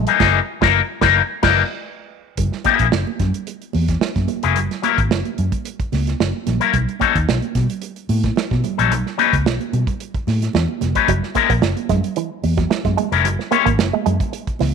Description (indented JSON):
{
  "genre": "funk",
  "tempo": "110 BPM",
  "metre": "4/4",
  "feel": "straight",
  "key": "unclear",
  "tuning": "A4 = 440 Hz",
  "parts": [
    { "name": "electric guitar with an envelope filter", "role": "riff", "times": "0.0-0.1, 11.1-14.7 s", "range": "Fb3 to Bb3", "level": "-24 LUFS", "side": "right 11 dB", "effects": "none" },
    { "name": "vintage muted fingered electric bass", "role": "bass", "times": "0.0-14.7 s", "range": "F1 to Cb3", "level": "-19 LUFS", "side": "left 1 dB", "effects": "none" },
    { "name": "electric guitar with an envelope filter", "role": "accompaniment", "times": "0.1-13.7 s", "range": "Fb3 to Db5", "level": "-17 LUFS", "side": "left 14 dB", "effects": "none" },
    { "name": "warm soul drum kit", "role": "drums", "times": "0.1-14.7 s", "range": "crash cymbal, hi-hat, kick drum, snare drum", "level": "-22 LUFS", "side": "right 4 dB", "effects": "none" },
    { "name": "congas", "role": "percussion", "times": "2.4-14.7 s", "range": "none", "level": "-27 LUFS", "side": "right 13 dB", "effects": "none" }
  ],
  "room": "light reverb",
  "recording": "1960s-style stereo with parts hard left and right",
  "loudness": "-16 LUFS",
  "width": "side -6 dB against mid",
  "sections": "0.0-2.4 A section; 2.4-14.7 B section",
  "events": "band accent 0.2-2.4",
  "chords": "0.0 Gb13; 2.4 Gb9; 6.7 Cb9; 11.1 Gb9"
}